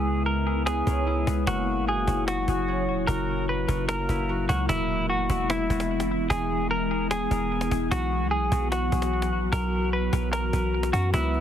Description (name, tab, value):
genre	hip hop, atmospheric cloud-rap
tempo	149 BPM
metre	4/4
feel	half-time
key	E lydian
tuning	A4 = 437 Hz
part	semi-hollow electric guitar	melody	0.0-11.4 s	E4 to B4	-28 LUFS	equal	low-pass filter, ping-pong delay
part	glassy FM pad	sustained chords	0.0-11.4 s	A#2 to F#4	-29 LUFS	left 2 dB	ensemble chorus, built-in reverb, low-pass filter
part	concert harp	arpeggios	0.0-7.7, 11.1-11.4 s	A#3 to F#4	-34 LUFS	equal	low-pass filter, ping-pong delay
part	warm 808-style bass	bass	0.0-11.4 s	E1 to F#2	-28 LUFS	equal	none
part	cajon	drums	0.7-11.4 s	none	-31 LUFS	equal	none
room	small room reverb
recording	heavily compressed radio sound, multiband compression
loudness	-23 LUFS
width	side -9 dB against mid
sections	0.0-4.7 A section; 4.7-11.4 B section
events	hi-hats muted 4.7-11.1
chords	0.0 C#m7; 1.5 F#7; 4.7 E; 7.9 B5